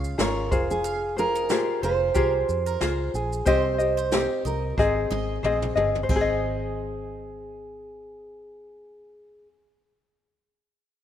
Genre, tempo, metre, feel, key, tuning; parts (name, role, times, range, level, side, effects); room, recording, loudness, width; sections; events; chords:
acoustic pop; 91 BPM; 4/4; swing 55% on 16ths; Ab major; A4 = 440 Hz
ukulele; accompaniment; 0.0-9.7 s; C4 to Eb5; -26 LUFS; left 4 dB
bowl-back mandolin; arpeggios; 0.0-8.0 s; Bb4 to F5; -40 LUFS; right 6 dB
vintage muted fingered electric bass; bass; 0.0-9.5 s; F1 to F2; -31 LUFS; equal
jazz brush drum kit; drums; 0.0-6.3 s; crash cymbal, kick drum, shaker, snare drum, toms; -29 LUFS; right 1 dB
fingerpicked steel-string acoustic guitar; melody; 0.2-9.5 s; Ab4 to C5; -28 LUFS; right 4 dB; digital delay
moderate plate reverb, RT60 2.1 s; rough home demo mix; -22 LUFS; side -10 dB against mid
0.0-6.1 A section; 6.1-8.7 B section
drum fill 4.8-6.1
0.0 Db; 0.5 Fmadd9; 3.5 Cm; 4.8 Ab